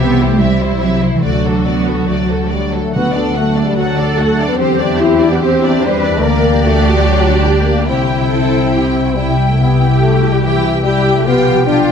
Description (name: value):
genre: cinematic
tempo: 144 BPM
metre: 4/4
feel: straight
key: unclear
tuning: A4 = 441 Hz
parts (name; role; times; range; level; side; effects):
- warm symphonic violin section; melody; 0.0-11.9 s; A4 to G5; -22 LUFS; left 2 dB; none
- warm symphonic violin section; second line; 0.0-11.9 s; E4 to A4; -23 LUFS; equal; none
- rich symphonic viola section; accompaniment; 0.0-11.9 s; F#3 to A4; -23 LUFS; right 2 dB; none
- concert harp; arpeggios; 0.0-11.9 s; B2 to G5; -19 LUFS; left 10 dB; none
- dark symphonic cello section; bass; 0.0-11.9 s; E3 to B4; -18 LUFS; right 4 dB; none
- warm symphonic double bass section; bass; 0.0-11.9 s; B1 to E2; -17 LUFS; right 4 dB; none
- warm French horn section; sustained chords; 2.5-11.9 s; E3 to E4; -16 LUFS; left 4 dB; none
- timpani; percussion; 3.0-3.5 s; D3; -23 LUFS; right 2 dB; none
room: moderate recital hall reverb, RT60 1.4 s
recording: dark, warm production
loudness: -11 LUFS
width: side -7 dB against mid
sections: 0.0-3.0 A section; 3.0-11.9 A section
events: none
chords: 0.0 C; 1.2 D; 4.6 Cadd9/E; 6.2 Gm/D; 7.9 C; 11.3 G7/B